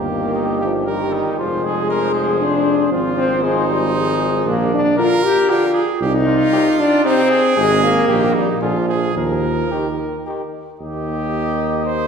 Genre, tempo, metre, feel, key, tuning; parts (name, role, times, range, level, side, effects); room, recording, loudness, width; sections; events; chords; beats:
classical, brass quintet; 116 BPM; 3/4; rubato; Eb major; A4 = 440 Hz
mellow cornet; melody; 0.0-12.1 s; G4 to Eb5; -26 LUFS; left 4 dB
warm trumpet; second line; 0.0-12.1 s; D4 to C5; -23 LUFS; right 4 dB
clear trombone; accompaniment; 0.0-12.1 s; C3 to Bb3; -27 LUFS; right 2 dB
mellow French horn; accompaniment; 0.0-12.1 s; Eb3 to G4; -18 LUFS; left 2 dB
mellow tuba; bass; 0.0-12.1 s; F1 to Eb2; -22 LUFS; right 2 dB
wet concert hall reverb, RT60 1.8 s; minimal, uncompressed stereo recording; -15 LUFS; side -6 dB against mid
0.0-10.8 A section; 10.8-12.1 B section
0.0 Eb/G; 1.4 Fm; 2.9 Fm/Ab; 4.5 Bb; 6.0 Cm; 7.6 Ab; 8.1 Eb/Bb; 8.6 Bb7; 9.2 Eb5; 10.8 Eb
0.35 0.87 | 1.39 1.90 2.40 | 2.92 3.43 3.94 | 4.46 4.98 5.50 | 6.01 6.53 7.05 | 7.57 8.09 8.62 | 9.16 9.72 10.26 | 10.81 11.34 11.86